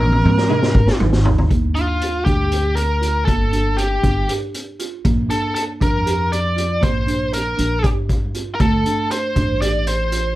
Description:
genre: progressive instrumental, band music in an uneven meter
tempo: 237 BPM (eighths)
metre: 7/8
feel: straight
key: G minor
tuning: A4 = 442 Hz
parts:
  - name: biting lead guitar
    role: melody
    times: 0.0-10.3 s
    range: F4 to D5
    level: -21 LUFS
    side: equal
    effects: overdrive, slapback echo
  - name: buzzing marimba with medium mallets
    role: arpeggios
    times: 0.0-10.3 s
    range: A3 to G4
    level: -25 LUFS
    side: right 4 dB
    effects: none
  - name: upright bass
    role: bass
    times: 0.0-10.3 s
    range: G1 to Ab2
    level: -20 LUFS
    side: equal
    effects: none
  - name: raw garage drum kit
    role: drums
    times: 0.0-10.2 s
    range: hi-hat, kick drum, snare drum, toms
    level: -20 LUFS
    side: equal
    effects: none
  - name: vintage hollow-body jazz guitar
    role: accompaniment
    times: 0.5-0.7 s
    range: Ab3 to Eb5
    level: -24 LUFS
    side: equal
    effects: none
room: light reverb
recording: dark, warm production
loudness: -16 LUFS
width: side -16 dB against mid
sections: 0.0-1.5 A section; 1.5-10.4 B section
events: drum fill 0.0-1.5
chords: 0.0 Absus2; 1.5 G5; 5.1 Bb; 8.6 D5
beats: 0.24 0.50 0.75 1.00 1.25 | 1.51 1.76 2.01 2.27 2.52 2.77 3.03 | 3.28 3.53 3.79 4.04 4.29 4.55 4.80 | 5.06 5.31 5.56 5.82 6.07 6.32 6.58 | 6.83 7.08 7.34 7.59 7.84 8.10 8.35 | 8.60 8.86 9.11 9.36 9.62 9.87 10.12

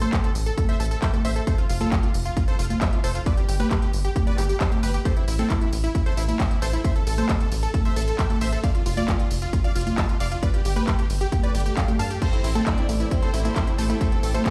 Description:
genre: uplifting trance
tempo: 134 BPM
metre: 4/4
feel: straight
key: A minor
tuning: A4 = 439 Hz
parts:
  - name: supersaw stab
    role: melody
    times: 0.0-14.5 s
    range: C4 to A5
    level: -33 LUFS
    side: equal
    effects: sidechain pumping, tape echo
  - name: unison pluck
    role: second line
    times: 0.0-14.5 s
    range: E4 to A5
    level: -38 LUFS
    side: equal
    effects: sidechain pumping, digital delay
  - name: tight sequencer bass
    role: bass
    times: 0.0-14.4 s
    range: F1 to G2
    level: -27 LUFS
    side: equal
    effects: sidechain pumping
  - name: techno drum kit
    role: drums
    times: 0.0-14.5 s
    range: congas, crash cymbal, handclaps, hi-hat, ride cymbal, tambourine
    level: -31 LUFS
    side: equal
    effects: overdrive, small room ambience
  - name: electronic kick drum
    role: drums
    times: 0.1-14.5 s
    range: none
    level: -25 LUFS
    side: equal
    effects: overdrive, small room ambience
  - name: swell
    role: sound effects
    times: 11.5-12.2 s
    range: none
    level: -37 LUFS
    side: equal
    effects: none
  - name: clear studio violin section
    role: second line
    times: 12.2-14.2 s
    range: A3 to D5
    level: -37 LUFS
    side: equal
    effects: tape echo
  - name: lush unison pad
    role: sustained chords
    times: 12.2-14.5 s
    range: E3 to G4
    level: -37 LUFS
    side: equal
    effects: chorus, sidechain pumping
  - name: unison pluck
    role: arpeggios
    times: 12.2-14.5 s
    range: E3 to A4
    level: -34 LUFS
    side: equal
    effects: sidechain pumping, digital delay
room: light reverb, digital ambience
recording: played on a big sound system in a bare room, stone room reverb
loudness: -23 LUFS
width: mono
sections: 0.0-14.5 A section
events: swell 11.5-12.2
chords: 0.0 Am; 1.5 F5; 3.3 G; 5.1 Am; 8.6 F5; 10.4 N.C.; 12.2 Am7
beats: 0.13 0.58 1.02 | 1.47 1.92 2.37 2.81 | 3.26 3.71 4.16 4.61 | 5.05 5.50 5.95 6.40 | 6.84 7.29 7.74 8.19 | 8.64 9.08 9.53 9.98 | 10.43 10.88 11.32 11.77 | 12.22 12.67 13.11 13.56 | 14.01 14.46

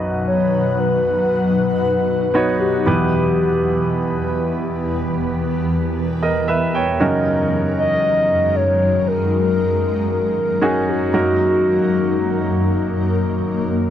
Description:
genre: pop ballad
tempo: 58 BPM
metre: 4/4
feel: straight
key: B major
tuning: A4 = 440 Hz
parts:
  - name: hollow clarinet-like synth lead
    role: melody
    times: 0.0-13.0 s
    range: F#4 to D#5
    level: -19 LUFS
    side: left 2 dB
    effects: chorus
  - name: clear concert grand piano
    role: accompaniment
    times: 0.0-13.9 s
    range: B1 to G5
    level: -21 LUFS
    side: right 2 dB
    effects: none
  - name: granular cloud pad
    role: sustained chords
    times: 0.0-13.9 s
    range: E2 to F#5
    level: -20 LUFS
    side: left 2 dB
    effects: built-in reverb
room: light reverb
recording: dry, close 1970s-style studio recording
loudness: -16 LUFS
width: side -10 dB against mid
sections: 0.0-13.9 A section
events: none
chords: 0.0 B; 2.9 Em; 7.0 F#6; 11.1 D#m/F#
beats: 0.79 1.83 | 2.86 3.90 4.93 5.97 | 7.00 8.04 9.07 10.11 | 11.14 12.17 13.21

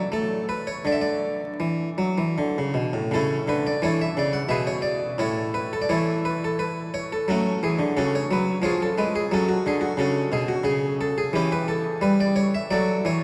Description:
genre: classical, baroque-style suite movement for harpsichord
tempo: 87 BPM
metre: 3/4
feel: rubato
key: D major, A major from 3.1 s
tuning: A4 = 441 Hz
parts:
  - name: harpsichord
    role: solo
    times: 0.0-13.2 s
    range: A2 to F#5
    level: -24 LUFS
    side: equal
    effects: none
room: wet cathedral reverb, RT60 5.0 s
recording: dark, warm production, vinyl crackle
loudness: -24 LUFS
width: mono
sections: 0.0-3.1 A section; 3.1-13.2 A section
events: none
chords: 0.1 N.C.; 3.1 A/C#; 4.5 Bm69; 5.2 A5; 7.3 F#m; 8.6 Fdim; 9.3 F#5; 11.3 Emadd11; 12.7 D/F#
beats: 0.10 | 0.84 1.60 2.37 | 3.12 3.83 4.51 | 5.21 5.91 6.58 | 7.26 7.95 8.63 | 9.32 9.99 10.67 | 11.35 12.03 12.71

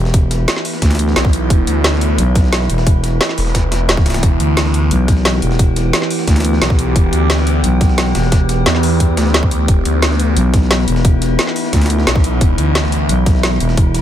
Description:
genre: dark technical drum and bass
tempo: 176 BPM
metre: 4/4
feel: straight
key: E minor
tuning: A4 = 440 Hz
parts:
  - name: metallic inharmonic drone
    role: sustained chords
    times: 0.0-14.0 s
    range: E3 to G4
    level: -19 LUFS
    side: equal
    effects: chorus, built-in reverb, phaser, sidechain pumping
  - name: growling FM bass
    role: bass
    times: 0.0-14.0 s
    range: E1 to D2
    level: -15 LUFS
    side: equal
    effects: none
  - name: breakbeat sampler-style drum kit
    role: drums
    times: 0.1-14.0 s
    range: hi-hat, snare drum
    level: -27 LUFS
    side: equal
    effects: overdrive, high-pass filter on hats, high-pass filter on snare, high-pass filter on room
  - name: drum and bass drum kit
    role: drums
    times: 0.1-14.0 s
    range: hi-hat, snare drum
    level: -18 LUFS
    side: equal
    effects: none
  - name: electronic kick drum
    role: drums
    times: 0.1-13.8 s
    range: none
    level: -13 LUFS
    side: equal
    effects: none
  - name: phased detuned saw bass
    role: bass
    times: 1.2-13.1 s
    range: E1 to E2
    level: -15 LUFS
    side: equal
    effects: phaser, overdrive, sidechain pumping
room: digital ambience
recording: none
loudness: -12 LUFS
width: side -11 dB against mid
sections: 0.0-14.0 A section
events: none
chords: 0.0 Em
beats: | 0.14 0.48 0.82 1.16 | 1.50 1.84 2.18 2.52 | 2.87 3.21 3.55 3.89 | 4.23 4.57 4.91 5.25 | 5.59 5.93 6.28 6.62 | 6.96 7.30 7.64 7.98 | 8.32 8.66 9.00 9.34 | 9.68 10.03 10.37 10.71 | 11.05 11.39 11.73 12.07 | 12.41 12.75 13.09 13.43 | 13.78

